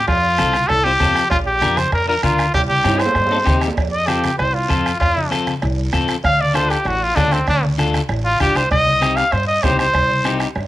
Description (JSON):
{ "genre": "latin, cumbia", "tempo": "195 BPM", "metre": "4/4", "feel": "straight", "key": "unclear", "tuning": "A4 = 440 Hz", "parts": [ { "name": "bright trumpet", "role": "melody", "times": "0.0-10.4 s", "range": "C4 to F5", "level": "-17 LUFS", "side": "equal", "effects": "cassette tape, plate reverb" }, { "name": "upright bass", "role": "bass", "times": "0.0-10.7 s", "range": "A1 to G2", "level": "-22 LUFS", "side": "equal", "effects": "none" }, { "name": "bombo", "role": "percussion", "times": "0.1-10.7 s", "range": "none", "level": "-23 LUFS", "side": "right 1 dB", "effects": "none" }, { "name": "congas", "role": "percussion", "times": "0.1-10.7 s", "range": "none", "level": "-28 LUFS", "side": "left 2 dB", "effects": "none" }, { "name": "cowbell and timbales", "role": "percussion", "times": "0.1-10.7 s", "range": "none", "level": "-28 LUFS", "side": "right 5 dB", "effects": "none" }, { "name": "guiro", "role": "percussion", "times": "0.1-10.7 s", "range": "none", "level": "-33 LUFS", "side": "right 6 dB", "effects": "none" }, { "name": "electric guitar at the edge of break-up", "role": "accompaniment", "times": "0.4-10.5 s", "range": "C4 to C5", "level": "-24 LUFS", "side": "left 5 dB", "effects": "cassette tape, plate reverb" } ], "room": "moderate studio reverb, RT60 0.6 s", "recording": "home recording on cassette", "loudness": "-14 LUFS", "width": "side -15 dB against mid", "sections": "0.0-3.8 A section; 3.8-10.7 B section", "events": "drum fill 2.9-3.8; trumpet solo 3.8-10.7", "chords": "0.0 F; 1.3 Bb; 2.5 Cm; 3.8 F; 6.2 Dm; 8.7 Cm" }